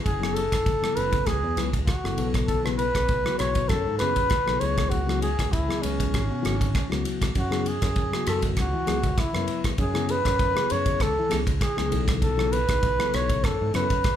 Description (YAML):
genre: electric jazz fusion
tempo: 99 BPM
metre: 4/4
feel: swing 54% on 16ths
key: F# minor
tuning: A4 = 440 Hz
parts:
  - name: trumpet with bucket mute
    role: melody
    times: 0.0-14.2 s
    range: C#4 to C#5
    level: -26 LUFS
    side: equal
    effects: none
  - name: fingered electric bass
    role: bass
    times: 0.1-14.0 s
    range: F#1 to E3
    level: -29 LUFS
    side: equal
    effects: none
  - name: modern studio drum kit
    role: drums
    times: 0.1-14.2 s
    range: kick drum, ride cymbal, rim click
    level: -27 LUFS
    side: equal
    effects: none
  - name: mellow tine electric piano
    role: accompaniment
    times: 0.2-14.0 s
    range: C#3 to B4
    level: -30 LUFS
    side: left 4 dB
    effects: none
room: moderate large studio reverb, RT60 1.4 s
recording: band playing live in one room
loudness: -22 LUFS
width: side -10 dB against mid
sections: 0.0-14.2 A section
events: none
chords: 0.0 F#m9; 2.2 B9sus4; 4.6 C#m7; 7.4 F#sus2; 11.9 B9sus4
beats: | 0.06 0.67 1.27 1.88 | 2.49 3.10 3.71 4.31 | 4.92 5.53 6.14 6.75 | 7.36 7.96 8.57 9.18 | 9.79 10.40 11.01 11.61 | 12.22 12.83 13.44 14.04